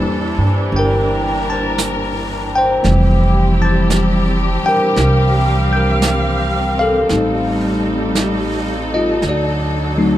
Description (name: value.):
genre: jazz ballad.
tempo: 56 BPM.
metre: 4/4.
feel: swing 69% on 8ths.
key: F major.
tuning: A4 = 439 Hz.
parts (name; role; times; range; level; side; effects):
bell-like tine electric piano; accompaniment; 0.0-10.2 s; E3 to A5; -17 LUFS; left 1 dB; phaser.
warm studio string section; sustained chords; 0.0-10.2 s; D3 to F5; -20 LUFS; equal; none.
upright bass; bass; 0.0-10.2 s; F1 to G2; -18 LUFS; right 1 dB; none.
jazz brush drum kit; drums; 0.7-10.2 s; brushed snare drum, hi-hat, snare drum; -25 LUFS; right 4 dB; none.
room: little or no reverb.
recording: close, detailed microphones.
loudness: -13 LUFS.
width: side -13 dB against mid.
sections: 0.0-10.2 A section.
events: none.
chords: 0.0 C13; 2.8 Fmaj9; 7.1 Am7b5; 9.2 D7b9.